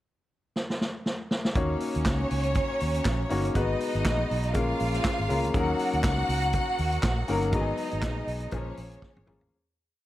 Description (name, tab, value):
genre	disco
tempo	120 BPM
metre	4/4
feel	swing 56% on 16ths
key	Eb minor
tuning	A4 = 438 Hz
part	vintage drum kit	drums	0.6-9.5 s	handclaps, hi-hat, kick drum, snare drum, toms	-30 LUFS	equal	none
part	clear symphonic string section	second line	1.6-9.5 s	Db4 to Gb5	-31 LUFS	right 1 dB	none
part	bright baby grand piano	accompaniment	1.6-9.5 s	F3 to Db5	-30 LUFS	left 3 dB	none
part	fingered electric bass	bass	1.6-9.5 s	G1 to Eb2	-29 LUFS	equal	none
room	light reverb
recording	none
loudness	-25 LUFS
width	side -14 dB against mid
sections	0.0-1.6 pickup bar; 1.6-9.5 verse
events	drum fill 0.6-1.6, 9.0-9.5; fade-out 7.5-9.5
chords	0.0 N.C.; 1.6 Ebm7; 3.5 Abm7; 4.5 Bbm7; 5.5 Ebm7; 7.5 Abm7; 8.5 Bbm7